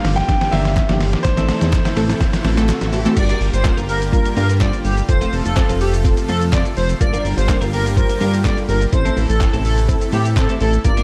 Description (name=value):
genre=dance-pop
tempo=125 BPM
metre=4/4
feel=straight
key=G dorian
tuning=A4 = 440 Hz
part: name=bright grand piano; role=melody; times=0.0-2.6 s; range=C5 to G5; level=-26 LUFS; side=equal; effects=low-pass filter
part: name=unison pluck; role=accompaniment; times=0.0-11.0 s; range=E3 to C5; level=-27 LUFS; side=equal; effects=sidechain pumping, low-pass filter
part: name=supersaw pad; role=sustained chords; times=0.0-11.0 s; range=C3 to A4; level=-30 LUFS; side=equal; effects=sidechain pumping, low-pass filter
part: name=twelve-string electric guitar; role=riff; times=0.0-11.0 s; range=G3 to Bb4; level=-30 LUFS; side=equal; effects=analog chorus, low-pass filter
part: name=chorused synth bass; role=bass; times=0.0-11.0 s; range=F1 to A2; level=-21 LUFS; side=equal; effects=sidechain pumping
part: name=trip hop sampler-style drum kit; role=drums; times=0.0-11.0 s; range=crash cymbal, handclaps, hi-hat, kick drum, shaker, snare drum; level=-21 LUFS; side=equal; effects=none
part: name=riser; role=sound effects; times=0.3-3.2 s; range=none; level=-33 LUFS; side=equal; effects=none
part: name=group handclap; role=percussion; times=0.8-10.5 s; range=none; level=-39 LUFS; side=equal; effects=none
part: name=airy dreamy lead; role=melody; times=3.2-11.0 s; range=G4 to D5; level=-26 LUFS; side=equal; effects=chorus, tape echo
room=little or no reverb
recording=dark, warm production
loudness=-17 LUFS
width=mono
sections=0.0-3.2 A section; 3.2-11.0 B section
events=build-up 0.0-3.2; drum fill 0.0-3.2; drop 3.2-11.0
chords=0.0 Gm7; 1.2 Am; 3.2 Gm7; 5.1 F; 7.0 Gm7; 8.9 Am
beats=0.29 0.77 | 1.25 1.73 2.21 2.69 | 3.17 3.65 4.13 4.61 | 5.09 5.57 6.05 6.53 | 7.01 7.49 7.97 8.45 | 8.93 9.41 9.89 10.37 | 10.85